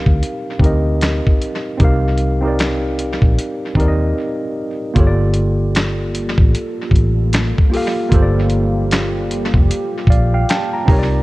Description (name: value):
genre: lo-fi hip hop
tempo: 76 BPM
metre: 4/4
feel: swing 60% on 16ths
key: G minor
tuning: A4 = 441 Hz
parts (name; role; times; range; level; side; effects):
- mellow tine electric piano; accompaniment; 0.0-11.2 s; Bb3 to Bb5; -20 LUFS; right 1 dB; medium stereo tremolo, low-pass filter
- vintage muted fingered electric bass; bass; 0.0-11.2 s; F1 to Eb2; -17 LUFS; equal; none
- dusty soul sampler-style drum kit; drums; 0.1-11.1 s; handclaps, hi-hat, kick drum, snare drum; -16 LUFS; equal; tape echo
- deep dark ambient pad; sustained chords; 6.1-11.2 s; C3 to D5; -26 LUFS; equal; chorus, built-in reverb, low-pass filter
room: digital ambience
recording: echo-heavy mix, cassette tape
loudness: -14 LUFS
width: side -19 dB against mid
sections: 0.0-5.0 A section; 5.0-11.2 B section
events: filter sweep on tine electric piano 0.0-5.0; break 4.2-5.0; tine electric piano fill 9.7-11.2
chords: 0.0 Cm9; 5.0 Gm9